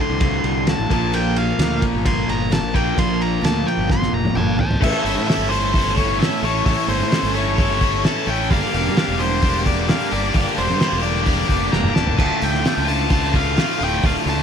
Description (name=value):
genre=classic rock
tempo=130 BPM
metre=4/4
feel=straight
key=unclear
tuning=A4 = 439 Hz
part: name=octave-fuzz lead guitar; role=melody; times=0.0-14.4 s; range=C5 to C6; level=-24 LUFS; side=left 1 dB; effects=distortion
part: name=fingerpicked twelve-string acoustic guitar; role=accompaniment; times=0.0-14.4 s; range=G2 to Bb4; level=-30 LUFS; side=right 10 dB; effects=none
part: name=cranked stack guitar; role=riff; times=0.0-14.4 s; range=D2 to A4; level=-25 LUFS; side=right 13 dB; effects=overdrive, phaser
part: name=overdriven electric guitar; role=riff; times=0.0-14.4 s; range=D2 to A4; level=-23 LUFS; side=left 14 dB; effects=none
part: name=fuzz fingered electric bass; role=bass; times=0.1-14.4 s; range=D1 to A2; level=-24 LUFS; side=equal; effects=overdrive
part: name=cloth-damped thuddy drum kit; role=drums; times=0.2-14.4 s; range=crash cymbal, hi-hat, kick drum, ride cymbal, snare drum, toms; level=-22 LUFS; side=equal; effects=none
room=light reverb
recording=none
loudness=-16 LUFS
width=side -7 dB against mid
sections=0.0-4.8 A section; 4.8-14.4 B section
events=lead electric guitar solo 0.0-4.8; drum fill 3.9-4.8, 11.7-12.2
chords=0.0 Dm; 0.9 Bb; 4.8 A; 8.5 Gm; 12.2 Dm